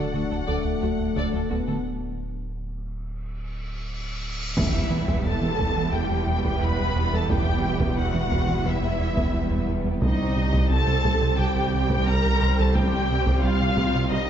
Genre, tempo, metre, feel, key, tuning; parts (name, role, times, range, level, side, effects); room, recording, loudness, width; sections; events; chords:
cinematic, hybrid orchestral and electronic film score; 88 BPM; 4/4; straight; E minor; A4 = 440 Hz
warm symphonic violin section; melody; 0.0-14.3 s; Eb5 to B5; -29 LUFS; left 3 dB
rich symphonic violin section; second line; 0.0-14.3 s; G3 to D5; -35 LUFS; left 3 dB
warm symphonic viola section; accompaniment; 0.0-14.3 s; Eb4 to B4; -32 LUFS; right 2 dB
chorused pulse-width pad; sustained chords; 0.0-14.3 s; G3 to E5; -32 LUFS; right 1 dB
dark French horn section; sustained chords; 0.0-14.3 s; G3 to D4; -34 LUFS; left 4 dB
woody wave-folded pluck; arpeggios; 0.0-14.2 s; C3 to E4; -35 LUFS; left 1 dB
rubbery square bass; riff; 0.0-14.2 s; C2 to E3; -28 LUFS; right 2 dB
punchy sub bass; bass; 0.0-14.3 s; D1 to C2; -30 LUFS; equal
warm symphonic cello section; bass; 0.0-14.3 s; C2 to E2; -31 LUFS; right 3 dB
solo taiko drums; drums; 0.1-0.5, 4.6-14.3 s; -29 LUFS; equal
cymbal swell and impact; sound effects; 3.8-7.3 s; -33 LUFS; equal
warm symphonic double bass section; bass; 4.6-14.3 s; E1 to C2; -31 LUFS; right 4 dB
moderate concert hall reverb, RT60 2.4 s; nothing above 7.7 kHz; -21 LUFS; side -9 dB against mid
0.0-4.6 A section; 4.6-14.3 B section
break 1.8-4.6; cymbal swell 3.8-4.6; impact 4.6-7.3
0.0 D; 4.6 Em; 10.0 Cm